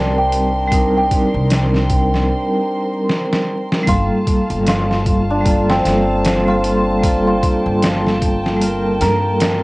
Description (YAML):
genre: trip hop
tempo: 76 BPM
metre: 4/4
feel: swing 58% on 16ths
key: G minor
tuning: A4 = 438 Hz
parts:
  - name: cimbalom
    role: melody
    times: 0.0-9.6 s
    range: C4 to Bb4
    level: -20 LUFS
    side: equal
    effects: tape echo
  - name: vibraphone with medium hard mallets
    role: accompaniment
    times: 0.0-9.6 s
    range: G3 to Bb4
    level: -18 LUFS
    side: equal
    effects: tremolo, cassette tape
  - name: warm chamber violin section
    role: sustained chords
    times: 0.0-9.6 s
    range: Bb4 to C6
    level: -28 LUFS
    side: equal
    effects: cassette tape
  - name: upright bass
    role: bass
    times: 0.0-9.6 s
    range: G1 to G2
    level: -21 LUFS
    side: equal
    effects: none
  - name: trip hop sampler-style drum kit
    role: drums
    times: 0.3-9.6 s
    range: hi-hat, kick drum, snare drum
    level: -19 LUFS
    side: equal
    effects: cassette tape
room: light reverb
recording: home recording on cassette, vinyl crackle, nothing above 10.3 kHz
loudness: -14 LUFS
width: side -22 dB against mid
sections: 0.0-3.9 A section; 3.9-9.6 B section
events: break 2.3-3.9; drum fill 3.1-3.9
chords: 0.0 Cm7; 3.9 Gm9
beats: | 0.72 1.51 2.30 3.09 | 3.88 4.67 5.46 6.24 | 7.03 7.82 8.61 9.40